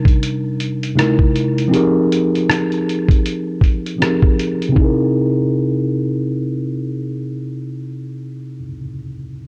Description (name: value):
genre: lo-fi hip hop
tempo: 79 BPM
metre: 4/4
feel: swing 58% on 16ths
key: C minor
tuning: A4 = 442 Hz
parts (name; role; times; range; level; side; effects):
- mellow tine electric piano; accompaniment; 0.0-9.5 s; C3 to Bb4; -20 LUFS; equal; cassette tape, low-pass filter
- lo-fi sampler-style drum kit; drums; 0.1-5.0 s; hi-hat, kick drum, rim click; -18 LUFS; equal; none
room: light reverb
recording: cassette tape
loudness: -17 LUFS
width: mono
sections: 0.0-4.8 A section; 4.8-7.8 B section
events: filter sweep on tine electric piano 0.0-4.8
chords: 0.0 Cm7; 1.0 C7alt; 1.7 Fm11; 4.8 C7alt